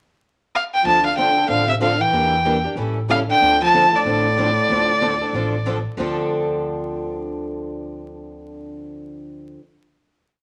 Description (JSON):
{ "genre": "acoustic string swing (jazz manouche)", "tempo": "187 BPM", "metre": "4/4", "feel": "swing 60% on 8ths", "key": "D minor", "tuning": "A4 = 440 Hz", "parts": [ { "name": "clear violin", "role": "melody", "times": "0.6-5.7 s", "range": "D5 to A5", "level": "-19 LUFS", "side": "equal", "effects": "none" }, { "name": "warm French horn", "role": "second line", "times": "0.8-5.7 s", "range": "A2 to F3", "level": "-27 LUFS", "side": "equal", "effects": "none" }, { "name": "picked steel-string acoustic guitar", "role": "accompaniment", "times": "0.8-9.6 s", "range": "D3 to A4", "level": "-28 LUFS", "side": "equal", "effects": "none" }, { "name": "upright bass", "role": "bass", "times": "0.8-9.5 s", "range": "A1 to E2", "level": "-31 LUFS", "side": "equal", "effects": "none" }, { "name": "picked steel-string acoustic guitar", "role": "accompaniment", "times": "0.9-9.6 s", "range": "D3 to Bb4", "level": "-34 LUFS", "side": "equal", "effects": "none" } ], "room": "moderate large studio reverb, RT60 1.2 s", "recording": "vinyl crackle", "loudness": "-19 LUFS", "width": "mono", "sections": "0.0-0.9 pickup bar; 0.9-6.0 A section; 6.0-8.5 final chord", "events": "none", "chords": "0.0 N.C.; 0.9 Dm7; 2.1 Em7b5; 2.8 A7; 3.4 Dm7", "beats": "0.21 0.53 | 0.85 1.17 1.49 1.81 | 2.13 2.45 2.77 3.09 | 3.41 3.73 4.05 4.38 | 4.70 5.02 5.34 5.66 | 5.98 6.30 6.62 6.94 | 7.26 7.58 7.90 8.22" }